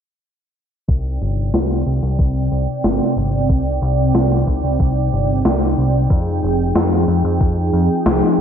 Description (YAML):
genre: synthwave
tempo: 92 BPM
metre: 4/4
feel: straight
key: C minor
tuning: A4 = 439 Hz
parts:
  - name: warm analog pad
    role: sustained chords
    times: 0.9-8.4 s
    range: C3 to G5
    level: -19 LUFS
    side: right 1 dB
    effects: chorus, sidechain pumping
  - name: deep dub picked electric bass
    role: bass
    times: 0.9-8.4 s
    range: F1 to F2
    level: -19 LUFS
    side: equal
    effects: sidechain pumping, low-pass filter
  - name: electronic kick drum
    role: drums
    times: 0.9-7.5 s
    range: none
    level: -17 LUFS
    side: equal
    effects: overdrive
  - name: electronic snare drum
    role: drums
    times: 1.5-8.2 s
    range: none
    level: -20 LUFS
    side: left 1 dB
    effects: gated reverb, gated reverb snare, overdrive
room: moderate plate reverb, RT60 2.6 s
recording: bright 1980s-style digital production, low-pass filter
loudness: -15 LUFS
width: side -8 dB against mid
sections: 0.9-8.4 A section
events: filter sweep on picked electric bass 0.9-8.4; filter sweep 0.9-8.4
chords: 0.9 Cmadd9; 6.1 Fm7